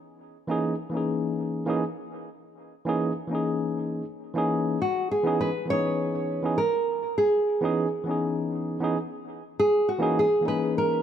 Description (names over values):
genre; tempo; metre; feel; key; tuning
chillout; 101 BPM; 4/4; straight; C# dorian; A4 = 441 Hz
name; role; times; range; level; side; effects
barky tine electric piano; accompaniment; 0.5-11.0 s; E3 to G#4; -27 LUFS; moving between left 5 dB and right 3 dB; auto-pan, tape echo
nylon-string guitar; melody; 4.8-11.0 s; F#4 to C#5; -24 LUFS; right 1 dB; tape echo
room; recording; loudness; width
light reverb, studio reverb; none; -24 LUFS; side -9 dB against mid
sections
0.0-11.0 A section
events
none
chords
0.0 C#m69/E; 4.8 C#m9; 9.6 Emaj7#11